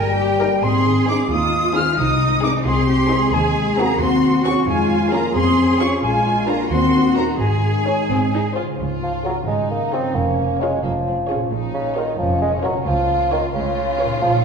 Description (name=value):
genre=cinematic, playful, whimsical film cue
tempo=88 BPM (dotted quarters)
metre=6/8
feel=straight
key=Db major from 3.3 s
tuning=A4 = 440 Hz
part: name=rich studio violin section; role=second line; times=0.0-14.4 s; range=Bb3 to F6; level=-27 LUFS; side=left 2 dB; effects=none
part: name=silver concert flute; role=second line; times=0.0-8.5 s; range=G5 to F6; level=-23 LUFS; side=equal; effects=none
part: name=dark French horn section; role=sustained chords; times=0.0-8.5 s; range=G3 to F4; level=-20 LUFS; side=left 3 dB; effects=none
part: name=concert harp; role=arpeggios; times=0.0-14.4 s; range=G2 to Db5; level=-26 LUFS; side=left 3 dB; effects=none
part: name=rich studio cello section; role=bass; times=0.0-14.4 s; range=Db2 to Bb4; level=-25 LUFS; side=right 3 dB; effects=none
part: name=rich studio double bass section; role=bass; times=0.0-14.4 s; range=F1 to F2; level=-25 LUFS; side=right 2 dB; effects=none
part: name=warm studio violin section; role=melody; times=0.4-14.2 s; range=Ab4 to Db5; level=-30 LUFS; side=left 3 dB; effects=none
part: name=rich studio viola section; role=accompaniment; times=0.4-14.2 s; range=C4 to Bb4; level=-28 LUFS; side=right 1 dB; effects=none
part: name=warm bassoon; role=accompaniment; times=9.0-14.3 s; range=Db3 to C4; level=-20 LUFS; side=right 2 dB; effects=none
room=wet recital hall reverb, RT60 1.6 s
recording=heard from further back in the room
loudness=-16 LUFS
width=side -6 dB against mid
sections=0.0-8.8 A section; 8.8-14.4 B section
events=none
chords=0.0 Eb/G; 0.6 Ab; 2.0 Ab/C; 3.3 Ab7/Eb; 4.7 Db/F; 6.0 Bb7; 6.7 Ebm; 7.4 Absus4; 8.1 Ab; 8.8 Db; 10.2 Db/F; 11.5 Bbm; 12.9 Bbm/Db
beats=| 0.63 1.31 | 1.98 2.66 | 3.33 4.00 | 4.68 5.35 | 6.03 6.71 | 7.40 8.10 | 8.79 9.48 | 10.16 10.84 | 11.51 12.19 | 12.87 13.55 | 14.22